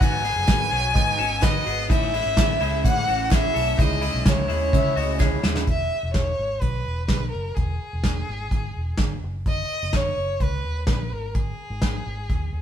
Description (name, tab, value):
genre	jangly indie pop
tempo	127 BPM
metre	4/4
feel	straight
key	C# minor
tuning	A4 = 440 Hz
part	warm violin	melody	0.0-12.6 s	G#4 to G#5	-26 LUFS	left 1 dB	none
part	electric guitar through a small old amp	accompaniment	0.0-5.7 s	G#2 to F#4	-31 LUFS	right 5 dB	phaser
part	twelve-string electric guitar	arpeggios	0.0-5.7 s	G#3 to B4	-30 LUFS	left 6 dB	none
part	vintage muted fingered electric bass	bass	0.0-12.6 s	E1 to C#3	-28 LUFS	equal	none
part	soft brush drum kit	drums	0.0-12.4 s	hi-hat, kick drum, ride cymbal, snare drum	-23 LUFS	equal	none
part	breathy trumpet	second line	0.5-1.3, 4.7-5.7 s	G#4 to E5	-32 LUFS	left 3 dB	none
part	group handclap	percussion	0.5-5.3 s	none	-38 LUFS	right 3 dB	none
room	moderate stone room reverb, RT60 1.4 s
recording	band playing live in one room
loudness	-20 LUFS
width	side -9 dB against mid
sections	0.0-5.7 A section; 5.7-12.6 B section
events	drum fill 5.2-5.7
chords	0.0 Badd9; 1.9 A; 3.8 C#m; 5.7 E; 9.2 F#5; 11.1 G#5